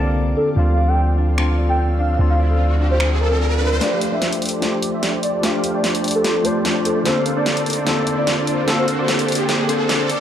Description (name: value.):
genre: future bass.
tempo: 148 BPM.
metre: 4/4.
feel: swing 54% on 16ths, half-time.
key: F major.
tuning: A4 = 440 Hz.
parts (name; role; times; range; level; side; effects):
warm velvety synth lead; melody; 0.0-10.2 s; G4 to G5; -24 LUFS; equal; chorus, tape echo.
tine electric piano; accompaniment; 0.0-10.1 s; D3 to A5; -23 LUFS; left 2 dB; medium stereo tremolo.
ethereal airy pad; sustained chords; 0.0-10.2 s; A3 to E6; -30 LUFS; right 1 dB; ensemble chorus, built-in reverb.
Celtic harp; arpeggios; 0.0-6.4 s; D4 to D5; -30 LUFS; left 4 dB; tape echo.
long sustained 808-style bass; bass; 0.0-3.8 s; C2 to D2; -17 LUFS; equal; none.
riser; sound effects; 1.7-10.2 s; none; -28 LUFS; right 1 dB; none.
big-room dance drum kit; drums; 1.4-10.2 s; finger snaps, hi-hat, snare drum; -23 LUFS; equal; high-pass filter on snare, high-pass filter on hats.
supersaw chords; riff; 3.8-10.1 s; A3 to F5; -23 LUFS; right 1 dB; low-pass filter.
room: moderate lush hall reverb, RT60 2.0 s.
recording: dark, warm production, high-pass filter.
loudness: -16 LUFS.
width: side -10 dB against mid.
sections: 0.0-3.8 A section; 3.8-10.2 B section.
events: riser 1.7-3.8, 3.8-10.2; build-up 3.8-10.2; drum fill 3.8-10.2; filter sweep on supersaw synth 3.8-10.2.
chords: 0.0 C9sus4; 0.6 Dm9; 3.8 F69; 7.1 Bbmaj9.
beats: 0.16 | 0.57 0.97 1.38 1.78 | 2.19 2.60 3.00 3.41 | 3.81 4.22 4.62 5.03 | 5.43 5.84 6.24 6.65 | 7.05 7.46 7.87 8.27 | 8.68 9.08 9.49 9.89.